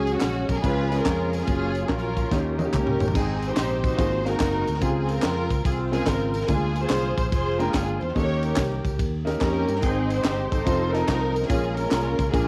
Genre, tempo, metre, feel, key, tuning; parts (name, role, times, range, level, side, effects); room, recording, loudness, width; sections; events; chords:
uptempo gospel; 144 BPM; 4/4; swing 66% on 8ths; Ab major from 3.1 s; A4 = 438 Hz
rich studio string section; melody; 0.0-12.5 s; C4 to Db5; -29 LUFS; equal
warm grand piano; accompaniment; 0.0-12.5 s; Ab2 to A5; -31 LUFS; equal; cassette tape
percussive tonewheel organ; sustained chords; 0.0-3.4, 9.8-12.5 s; D#3 to G5; -36 LUFS; equal
fingered electric bass; bass; 0.0-12.5 s; F1 to G2; -31 LUFS; equal
tight funk drum kit; drums; 0.1-12.5 s; crash cymbal, kick drum, ride cymbal, snare drum, toms; -30 LUFS; equal; cassette tape
tambourine and handclaps; percussion; 0.1-12.5 s; -41 LUFS; equal
light reverb; home recording on cassette; -24 LUFS; mono
0.0-3.1 A section; 3.1-12.5 A section
drum fill 2.3-3.1
0.0 C#sus4; 0.6 C#; 1.5 F#maj7; 2.3 D#7; 3.1 Abmaj7; 4.0 Ab13; 4.8 Dbmaj7; 6.5 Bb7; 8.2 Eb7; 9.8 Abmaj7; 10.7 F7; 11.5 Bbm7